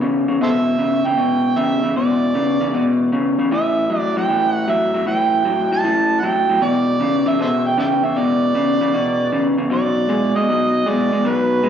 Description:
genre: blues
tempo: 155 BPM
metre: 4/4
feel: swing 68% on 8ths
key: E minor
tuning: A4 = 440 Hz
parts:
  - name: overdriven harmonica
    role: melody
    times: 0.0-11.7 s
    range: A4 to A5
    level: -19 LUFS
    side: right 4 dB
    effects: slapback echo
  - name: electric guitar through a small old amp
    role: riff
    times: 0.0-11.7 s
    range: E2 to G#3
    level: -17 LUFS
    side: left 2 dB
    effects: slapback echo
room: moderate club ambience, RT60 0.5 s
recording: live gig heard through the venue's PA, cassette tape, recital hall reverb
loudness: -15 LUFS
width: side -8 dB against mid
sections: 0.0-11.7 A section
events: none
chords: 0.0 E5; 3.5 A5; 6.6 E5; 9.7 B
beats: 0.02 | 0.41 0.80 1.19 1.57 | 1.96 2.35 2.74 3.13 | 3.52 3.90 4.29 4.68 | 5.07 5.45 5.84 6.23 | 6.62 7.00 7.39 7.78 | 8.16 8.55 8.94 9.32 | 9.71 10.10 10.48 10.87 | 11.26 11.64

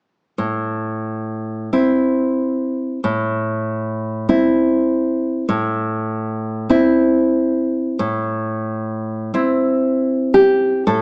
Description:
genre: romantic piece for solo classical guitar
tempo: 37-52 BPM (dotted quarters)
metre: 6/8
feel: rubato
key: A minor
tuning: A4 = 440 Hz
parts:
  - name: nylon-string guitar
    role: solo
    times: 0.4-11.0 s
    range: A2 to A4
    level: -19 LUFS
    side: equal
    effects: none
room: moderate recital hall reverb, RT60 1.3 s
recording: small speaker sound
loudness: -19 LUFS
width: mono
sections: 0.4-10.9 A section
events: none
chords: 0.4 Am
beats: | 0.39 1.74 | 3.04 4.30 | 5.50 6.71 | 8.02 9.36 | 10.89

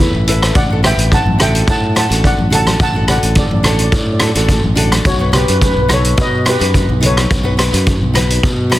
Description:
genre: calypso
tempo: 107 BPM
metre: 4/4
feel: swing 53% on 16ths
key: D major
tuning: A4 = 441 Hz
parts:
  - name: nylon-string guitar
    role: accompaniment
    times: 0.0-8.8 s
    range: D4 to C#5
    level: -21 LUFS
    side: left 1 dB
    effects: none
  - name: modern bright fingered electric bass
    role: bass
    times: 0.0-8.8 s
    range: A1 to B2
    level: -16 LUFS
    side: equal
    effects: none
  - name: street-band drum kit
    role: drums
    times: 0.0-8.8 s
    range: hi-hat, kick drum, rim click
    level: -14 LUFS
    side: equal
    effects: soft clipping on snare
  - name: steel pan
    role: melody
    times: 0.6-8.8 s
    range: F#4 to A5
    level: -19 LUFS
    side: equal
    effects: tape echo
  - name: congas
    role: percussion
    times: 0.6-8.8 s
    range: none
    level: -23 LUFS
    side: left 1 dB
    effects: none
room: light reverb, small room ambience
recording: dense, heavily limited modern master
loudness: -11 LUFS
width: side -15 dB against mid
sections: 0.0-8.8 A section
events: nylon-string guitar fill 0.0-0.6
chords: 0.0 Asus2; 0.6 D/A; 5.1 B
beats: | 0.55 1.12 1.68 2.24 | 2.81 3.37 3.93 4.50 | 5.06 5.62 6.18 6.75 | 7.31 7.87 8.44

